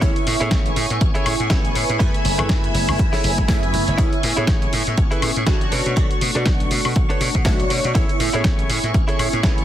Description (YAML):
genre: filtered disco house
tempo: 121 BPM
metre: 4/4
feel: swing 57% on 16ths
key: A major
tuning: A4 = 439 Hz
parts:
  - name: funky polysynth comp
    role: accompaniment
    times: 0.0-9.6 s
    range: A3 to G#5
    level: -25 LUFS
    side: right 2 dB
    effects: chorus, phaser, sidechain pumping
  - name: string machine, full ensemble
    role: sustained chords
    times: 0.0-9.6 s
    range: E5 to C#6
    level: -26 LUFS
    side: equal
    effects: ensemble chorus, sidechain pumping
  - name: direct-recorded clean electric guitar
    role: riff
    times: 0.0-9.6 s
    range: D4 to E5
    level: -28 LUFS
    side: equal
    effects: sidechain pumping
  - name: glassy slap bass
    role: bass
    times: 0.0-9.6 s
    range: F#1 to B2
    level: -24 LUFS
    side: equal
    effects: sidechain pumping
  - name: dusty soul sampler-style drum kit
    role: drums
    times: 0.0-9.6 s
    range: hi-hat, snare drum, woodblock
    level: -25 LUFS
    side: equal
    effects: sidechain pumping on hats, sidechain pumping on perc
  - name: electronic kick drum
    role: drums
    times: 0.0-9.6 s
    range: none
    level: -20 LUFS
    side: equal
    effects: overdrive
room: little or no reverb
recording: dense, heavily limited modern master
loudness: -16 LUFS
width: side -11 dB against mid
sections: 0.0-9.6 A section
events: none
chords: 0.0 Amaj7; 2.0 F#m11; 4.0 Amaj7; 5.7 Bm9; 8.0 Amaj7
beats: | 0.02 0.52 1.01 1.51 | 2.00 2.50 3.00 3.49 | 3.99 4.48 4.98 5.47 | 5.97 6.47 6.96 7.46 | 7.95 8.45 8.95 9.44